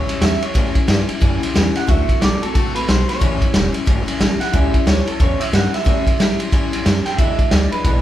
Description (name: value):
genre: rockabilly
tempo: 181 BPM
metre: 4/4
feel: swing 62% on 8ths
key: A mixolydian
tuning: A4 = 440 Hz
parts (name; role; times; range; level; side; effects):
- electric guitar through a small old amp; melody; 0.0-8.0 s; A4 to G5; -24 LUFS; right 3 dB; none
- picked steel-string acoustic guitar; accompaniment; 0.0-8.0 s; E2 to F#4; -23 LUFS; left 4 dB; none
- upright bass; bass; 0.0-8.0 s; E1 to A2; -22 LUFS; equal; none
- raw garage drum kit; drums; 0.1-7.9 s; kick drum, ride cymbal, snare drum; -16 LUFS; equal; none
room: moderate large studio reverb, RT60 1.1 s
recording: band playing live in one room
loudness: -14 LUFS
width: side -12 dB against mid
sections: 0.0-8.0 A section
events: none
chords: 0.0 A7; 1.9 D7; 3.2 A7; 7.2 E7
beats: 0.21 | 0.55 0.88 1.21 1.54 | 1.87 2.21 2.54 2.87 | 3.20 3.53 3.87 4.20 | 4.53 4.86 5.19 5.53 | 5.86 6.19 6.52 6.85 | 7.18 7.51 7.84